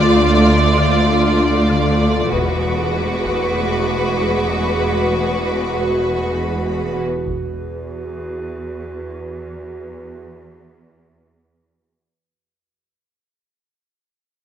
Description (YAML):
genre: cinematic, suspense film score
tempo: 97 BPM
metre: 4/4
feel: straight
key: unclear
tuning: A4 = 440 Hz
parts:
  - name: warm symphonic violin section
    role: melody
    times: 0.0-7.0 s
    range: B4 to D5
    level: -22 LUFS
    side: left 3 dB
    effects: none
  - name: rich symphonic violin section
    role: second line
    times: 0.0-7.0 s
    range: F4 to F#4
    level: -23 LUFS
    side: right 2 dB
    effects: none
  - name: rich symphonic viola section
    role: accompaniment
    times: 0.0-7.0 s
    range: G#3 to A3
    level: -24 LUFS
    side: right 2 dB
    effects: none
  - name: mellow French horn section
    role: sustained chords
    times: 0.0-6.9 s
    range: G#3 to F#4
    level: -22 LUFS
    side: equal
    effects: none
  - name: warbly tape-like pad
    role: sustained chords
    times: 0.0-12.2 s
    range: F4 to D5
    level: -26 LUFS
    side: equal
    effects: chorus, built-in reverb
  - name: buzzing marimba with medium mallets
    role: riff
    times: 0.0-7.2 s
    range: E2 to D4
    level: -25 LUFS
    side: left 4 dB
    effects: none
  - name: rich symphonic cello section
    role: bass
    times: 0.0-12.0 s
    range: D2 to E2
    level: -25 LUFS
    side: right 2 dB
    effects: none
  - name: warm symphonic double bass section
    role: bass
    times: 0.0-7.8 s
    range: E1 to D2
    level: -24 LUFS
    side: right 3 dB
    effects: none
  - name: warm symphonic violin section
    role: texture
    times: 0.0-6.9 s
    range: B5 to F6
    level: -30 LUFS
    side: left 4 dB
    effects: none
  - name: taiko ensemble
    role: drums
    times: 2.3-3.5, 7.3-8.5 s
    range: none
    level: -34 LUFS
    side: equal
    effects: none
room: moderate concert hall reverb, RT60 2.1 s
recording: none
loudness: -15 LUFS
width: side -9 dB against mid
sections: 0.0-7.3 A section; 7.3-12.2 B section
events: fade-out 7.3-12.2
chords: 0.0 Dm; 2.3 Eadd9